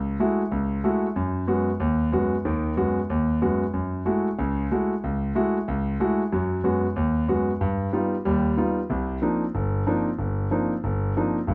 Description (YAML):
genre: jazz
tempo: 186 BPM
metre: 4/4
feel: swing 63% on 8ths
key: F# dorian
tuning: A4 = 438 Hz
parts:
  - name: warm concert grand piano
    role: solo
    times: 0.0-11.5 s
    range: G1 to F#4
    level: -25 LUFS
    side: equal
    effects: none
room: moderate studio reverb, RT60 0.9 s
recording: nothing above 7.9 kHz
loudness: -25 LUFS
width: mono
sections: 0.0-8.9 A section; 8.9-11.5 B section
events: none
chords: 0.0 F#m9; 1.2 G#m7; 3.7 F#m9; 6.3 G#m7/F#; 7.6 Gaug7; 8.9 Cm11